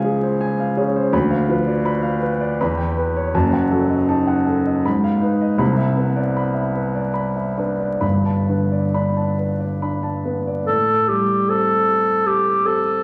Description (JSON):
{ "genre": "classical, impressionist duo for clarinet and grand piano", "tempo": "64-84 BPM", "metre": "3/4", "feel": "rubato", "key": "A minor", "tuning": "A4 = 440 Hz", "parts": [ { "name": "dark baby grand piano", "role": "accompaniment", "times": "0.0-13.0 s", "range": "F#1 to B5", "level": "-20 LUFS", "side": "equal", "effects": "none" }, { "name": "mellow clarinet", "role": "melody", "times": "10.7-13.0 s", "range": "G4 to A4", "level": "-18 LUFS", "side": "equal", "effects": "none" } ], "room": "wet recital hall reverb, RT60 1.4 s", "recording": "vinyl crackle", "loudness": "-19 LUFS", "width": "mono", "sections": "0.0-10.7 A section; 10.7-13.0 B section", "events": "none", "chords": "0.0 Dbmaj7; 1.1 Dm6; 2.6 Em6; 3.3 F#m6; 4.9 G#m6; 5.6 Cmaj9; 8.0 Gadd9; 10.7 Am7" }